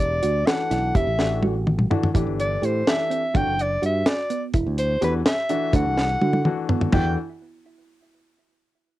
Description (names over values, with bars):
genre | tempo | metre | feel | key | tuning
progressive instrumental, band music in an uneven meter | 251 BPM (eighths) | 5/8 | straight | E minor | A4 = 439 Hz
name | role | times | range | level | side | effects
warm soprano saxophone | melody | 0.0-7.1 s | B4 to G5 | -24 LUFS | equal | cassette tape
thumb-piano-like synth pluck | arpeggios | 0.0-7.2 s | B3 to G4 | -29 LUFS | right 7 dB | chorus, cassette tape, tape echo
modern bright fingered electric bass | bass | 0.0-7.2 s | E1 to D3 | -25 LUFS | equal | none
deep reggae drum kit | drums | 0.2-7.0 s | crash cymbal, hi-hat, kick drum, snare drum, toms | -22 LUFS | equal | none
warm grand piano | accompaniment | 0.5-7.2 s | E3 to A4 | -29 LUFS | left 7 dB | cassette tape
room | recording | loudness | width
light reverb | home recording on cassette | -20 LUFS | side -15 dB against mid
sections
0.0-2.1 A section; 2.1-6.9 B section; 6.9-8.1 C section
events
drum fill 1.2-2.1, 6.0-6.9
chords
0.0 Em7; 2.1 Am7; 3.3 Gmaj7; 4.5 Em7; 5.7 D7; 6.9 E9sus4